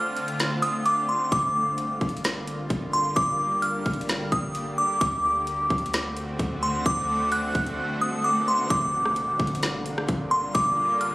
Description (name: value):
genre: hip hop, atmospheric cloud-rap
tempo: 130 BPM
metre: 4/4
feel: half-time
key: G minor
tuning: A4 = 439 Hz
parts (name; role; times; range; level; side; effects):
- delicate synth tine bell; melody; 0.0-11.1 s; C6 to F#6; -24 LUFS; equal; chorus, phaser, tremolo, digital delay
- shimmering ambient pad; sustained chords; 0.0-11.1 s; D3 to G4; -31 LUFS; equal; chorus, built-in reverb, sidechain pumping
- trap drum kit; drums; 0.2-11.1 s; hi-hat, kick drum, rim click, snare drum; -27 LUFS; equal; none
- soft 808-style bass; bass; 1.3-11.1 s; G1 to D2; -37 LUFS; equal; none
- riser and impact; sound effects; 7.5-10.6 s; none; -38 LUFS; equal; none
room: light reverb, digital ambience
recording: recorded on a phone in the room, studio reverb, compression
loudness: -22 LUFS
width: side -19 dB against mid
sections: 0.0-8.7 A section; 8.7-11.1 B section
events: break 0.0-1.3; riser 7.5-8.7; impact 8.7-10.6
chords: 0.0 Dm7; 1.3 Gm7; 5.0 D7; 8.7 Gm7